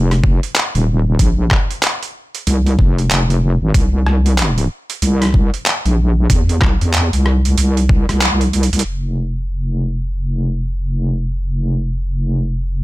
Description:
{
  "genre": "glitch hop",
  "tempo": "94 BPM",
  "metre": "4/4",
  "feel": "swing 61% on 16ths",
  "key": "unclear",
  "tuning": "A4 = 443 Hz",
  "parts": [
    { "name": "wobble bass", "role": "bass", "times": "0.0-12.8 s", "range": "Eb1 to E2", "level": "-15 LUFS", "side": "equal", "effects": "chorus, tube saturation" },
    { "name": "boom bap sampler-style drum kit", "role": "drums", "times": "0.1-8.9 s", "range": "handclaps, hi-hat, rim click", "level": "-18 LUFS", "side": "right 1 dB", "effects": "overdrive, low-pass filter on hats, studio reverb, low-pass filter on snare" },
    { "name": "electronic kick drum", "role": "drums", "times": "0.2-8.1 s", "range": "none", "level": "-14 LUFS", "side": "equal", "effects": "overdrive, studio reverb" }
  ],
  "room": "little or no reverb",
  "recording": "none",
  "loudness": "-14 LUFS",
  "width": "side -18 dB against mid",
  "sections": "0.0-8.9 A section; 8.9-12.8 B section",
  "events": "band accent 8.2-8.5; drum fill 8.5-8.9",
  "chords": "none",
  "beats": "0.56 | 1.19 1.83 2.47 3.11 | 3.75 4.38 5.02 5.66 | 6.30 6.94 7.58 8.21 | 8.85 9.49 10.13 10.77 | 11.41 12.04 12.68"
}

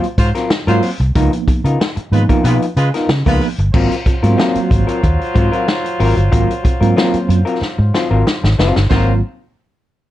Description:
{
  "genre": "funk",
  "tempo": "93 BPM",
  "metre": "4/4",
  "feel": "straight",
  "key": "Ab mixolydian",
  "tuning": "A4 = 439 Hz",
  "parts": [
    { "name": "vintage hollow-body jazz guitar", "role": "accompaniment", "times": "0.0-9.1 s", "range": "Gb3 to C5", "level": "-19 LUFS", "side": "left 3 dB", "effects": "none" },
    { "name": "mellow tine electric piano", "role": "stabs", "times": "0.0-9.2 s", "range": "Eb3 to Gb4", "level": "-19 LUFS", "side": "right 5 dB", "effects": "medium stereo tremolo" },
    { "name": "vintage drum kit", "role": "drums", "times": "0.0-9.1 s", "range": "crash cymbal, hi-hat, kick drum, snare drum, splash cymbal", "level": "-17 LUFS", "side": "equal", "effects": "none" },
    { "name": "warm horn section", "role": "second line", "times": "0.2-9.1 s", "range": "Gb3 to C5", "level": "-23 LUFS", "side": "equal", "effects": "none" },
    { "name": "vintage muted fingered electric bass", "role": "bass", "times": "0.2-9.2 s", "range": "Gb1 to Db3", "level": "-14 LUFS", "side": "equal", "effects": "none" }
  ],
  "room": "light reverb",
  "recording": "cassette tape",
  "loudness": "-12 LUFS",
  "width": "side -14 dB against mid",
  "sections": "0.0-3.7 A section; 3.7-8.9 B section; 8.9-10.1 C section",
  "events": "drum fill 7.6-8.9",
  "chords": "0.0 Ab13; 1.1 Db13; 3.7 Ab13",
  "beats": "0.50 | 1.15 1.79 2.44 3.09 | 3.73 4.38 5.03 5.67 | 6.32 6.97 7.61 8.26 | 8.91"
}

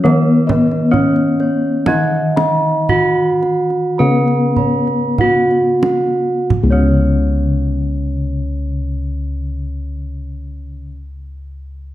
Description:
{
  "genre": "Javanese gamelan",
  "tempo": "44-70 BPM",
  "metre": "4/4",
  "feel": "straight",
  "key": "unclear",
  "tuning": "A4 = 440 Hz",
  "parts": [
    { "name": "gamelan-type bronze metallophone", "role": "melody", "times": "0.0-11.0 s", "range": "Cb4-45c to Cb5-45c", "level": "-18 LUFS", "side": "right 1 dB", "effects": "none" },
    { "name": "gamelan-type bronze metallophone", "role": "accompaniment", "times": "0.0-10.9 s", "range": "Db3 to Cb4-45c", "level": "-21 LUFS", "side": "left 3 dB", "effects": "none" },
    { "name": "gamelan-type bossed gongs", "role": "arpeggios", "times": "0.0-10.9 s", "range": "Db5 to Cb6-45c", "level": "-24 LUFS", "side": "left 2 dB", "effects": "none" },
    { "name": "gamelan-type bronze metallophone", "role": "arpeggios", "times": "0.0-10.9 s", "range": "Cb5-45c to Cb6-45c", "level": "-24 LUFS", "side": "right 4 dB", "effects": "none" },
    { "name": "gamelan-type bossed gongs", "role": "bass", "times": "0.0-10.9 s", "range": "Db2 to Gb4-35c", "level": "-19 LUFS", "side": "equal", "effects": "none" },
    { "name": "kendang", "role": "percussion", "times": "0.1-7.2 s", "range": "none", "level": "-21 LUFS", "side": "right 3 dB", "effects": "none" }
  ],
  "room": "wet recital hall reverb, RT60 1.6 s",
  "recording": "dark, warm production",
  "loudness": "-13 LUFS",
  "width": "side -14 dB against mid",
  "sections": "0.0-6.5 A section; 6.5-11.9 B section",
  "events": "slowing down 0.0-6.5",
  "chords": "none",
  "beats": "0.04 0.93 | 1.88 2.89 3.99 5.19 | 6.51 7.89 9.27 10.65"
}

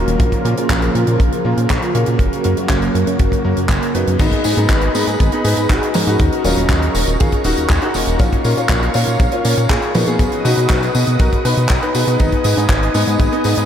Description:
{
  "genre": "italo disco",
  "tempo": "120 BPM",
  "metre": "4/4",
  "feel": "straight",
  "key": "unclear",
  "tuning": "A4 = 443 Hz",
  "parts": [
    { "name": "warm analog pad", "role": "sustained chords", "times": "0.0-13.7 s", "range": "Db3 to D#6", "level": "-21 LUFS", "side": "right 1 dB", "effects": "chorus" },
    { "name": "bright electric grand piano", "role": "stabs", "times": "0.0-13.7 s", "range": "Gb3 to Cb5", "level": "-23 LUFS", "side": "left 1 dB", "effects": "wide subtle chorus, diffuse ambient delay" },
    { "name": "chorused synth bass", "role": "bass", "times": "0.0-13.7 s", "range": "Eb1 to B2", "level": "-18 LUFS", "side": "equal", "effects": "none" },
    { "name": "tight funk drum kit", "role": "drums", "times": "0.1-13.7 s", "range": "crash cymbal, handclaps, hi-hat, tambourine, toms", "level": "-22 LUFS", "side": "equal", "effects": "none" },
    { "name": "kick drum", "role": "drums", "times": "0.2-13.3 s", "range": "none", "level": "-17 LUFS", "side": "equal", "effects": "none" },
    { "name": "bright grand piano", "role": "melody", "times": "4.2-13.6 s", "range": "Cb4 to B4", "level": "-20 LUFS", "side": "left 2 dB", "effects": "analog delay" }
  ],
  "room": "moderate huge ambient reverb, RT60 8.2 s",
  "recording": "dreamy mix soaked in reverb",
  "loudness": "-13 LUFS",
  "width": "side -9 dB against mid",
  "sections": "0.0-4.2 A section; 4.2-13.7 B section",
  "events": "none",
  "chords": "0.2 Bbm; 2.2 Gb; 4.2 Abm; 6.2 Ebm7; 8.2 Bbm; 10.2 B; 12.2 Abm",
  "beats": "| 0.20 0.70 1.20 1.70 | 2.20 2.70 3.20 3.70 | 4.20 4.70 5.20 5.70 | 6.20 6.70 7.20 7.70 | 8.20 8.70 9.20 9.70 | 10.20 10.70 11.20 11.70 | 12.20 12.70 13.20"
}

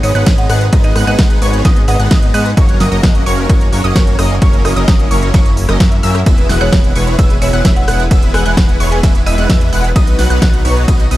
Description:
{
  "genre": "EDM, festival progressive house",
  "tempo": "130 BPM",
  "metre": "4/4",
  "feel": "straight",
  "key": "unclear",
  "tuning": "A4 = 441 Hz",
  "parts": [
    { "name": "buzzing marimba with hard mallets", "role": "melody", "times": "0.0-2.6, 6.6-9.5 s", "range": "C#5 to G#5", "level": "-23 LUFS", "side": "right 2 dB", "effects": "vintage 12-bit sampler grit, dub echo" },
    { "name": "supersaw pad", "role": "sustained chords", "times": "0.0-11.2 s", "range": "A#3 to G#4", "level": "-25 LUFS", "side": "equal", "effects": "sidechain pumping" },
    { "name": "wide unison pluck", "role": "arpeggios", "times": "0.0-11.2 s", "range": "C#6 to F#6", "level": "-23 LUFS", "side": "right 1 dB", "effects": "phaser, sidechain pumping, dub echo" },
    { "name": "supersaw chords", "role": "riff", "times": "0.0-11.2 s", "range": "F#3 to F#5", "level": "-19 LUFS", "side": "equal", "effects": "ensemble chorus, sidechain pumping, dub echo" },
    { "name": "fat analog bass", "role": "bass", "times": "0.0-11.2 s", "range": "E1 to G#2", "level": "-15 LUFS", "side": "equal", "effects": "sidechain pumping" },
    { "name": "pop drum kit", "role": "drums", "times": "0.0-11.2 s", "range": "hi-hat, ride cymbal, rim click, snare drum", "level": "-20 LUFS", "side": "equal", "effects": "none" },
    { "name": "electronic kick drum", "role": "drums", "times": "0.3-11.0 s", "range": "none", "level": "-11 LUFS", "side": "equal", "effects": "overdrive" }
  ],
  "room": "digital ambience",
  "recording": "none",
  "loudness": "-9 LUFS",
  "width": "side -16 dB against mid",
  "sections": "0.0-11.2 A section",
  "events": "none",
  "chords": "0.0 G#m; 2.6 F#; 6.3 E; 10.0 B",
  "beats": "0.27 | 0.73 1.19 1.65 2.11 | 2.57 3.03 3.50 3.96 | 4.42 4.88 5.34 5.80 | 6.26 6.73 7.19 7.65 | 8.11 8.57 9.03 9.50 | 9.96 10.42 10.88"
}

